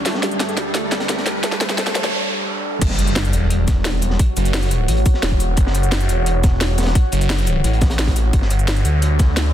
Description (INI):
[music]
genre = dark technical drum and bass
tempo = 174 BPM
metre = 4/4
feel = straight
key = F# phrygian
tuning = A4 = 440 Hz
[part]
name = deep dark ambient pad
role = sustained chords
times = 0.0-9.5 s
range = G3 to F#5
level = -26 LUFS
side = equal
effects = chorus, built-in reverb, sidechain pumping
[part]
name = phased detuned saw bass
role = bass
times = 0.0-9.5 s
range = E1 to D2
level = -18 LUFS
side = equal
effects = phaser
[part]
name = riser, noise sweep and impact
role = sound effects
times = 0.0-4.2 s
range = none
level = -26 LUFS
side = equal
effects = none
[part]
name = wide unison pluck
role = arpeggios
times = 0.1-2.1 s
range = G3 to A3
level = -26 LUFS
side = right 2 dB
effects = vintage 12-bit sampler grit, sidechain pumping, tape echo
[part]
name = crunchy breakbeat drum kit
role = drums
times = 0.1-9.4 s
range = hi-hat, snare drum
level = -30 LUFS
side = equal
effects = high-pass filter on hats, high-pass filter on snare, high-pass filter on room
[part]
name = drum and bass drum kit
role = drums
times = 0.1-9.4 s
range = cabasa, crash cymbal, hi-hat, snare drum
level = -24 LUFS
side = equal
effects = none
[part]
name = electronic kick drum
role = drums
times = 2.8-9.3 s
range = none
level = -16 LUFS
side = equal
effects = none
[sound]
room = light reverb, digital ambience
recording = dense, heavily limited modern master, high-pass filter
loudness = -16 LUFS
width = side -11 dB against mid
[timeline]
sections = 0.0-2.8 A section; 2.8-9.5 B section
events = build-up 0.0-2.8; drum fill 0.0-2.1; riser 0.0-2.1; filter sweep on synth arpeggio sound 0.0-2.8; noise sweep 1.4-2.8; break 2.1-2.8; drop 2.8-9.5; impact 2.8-4.2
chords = 0.0 G5; 2.8 F#m7; 8.3 G5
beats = | 0.06 0.40 0.75 1.09 | 1.44 1.78 2.13 2.47 | 2.82 3.16 3.51 3.85 | 4.20 4.54 4.88 5.23 | 5.58 5.92 6.26 6.61 | 6.95 7.30 7.64 7.99 | 8.33 8.68 9.02 9.37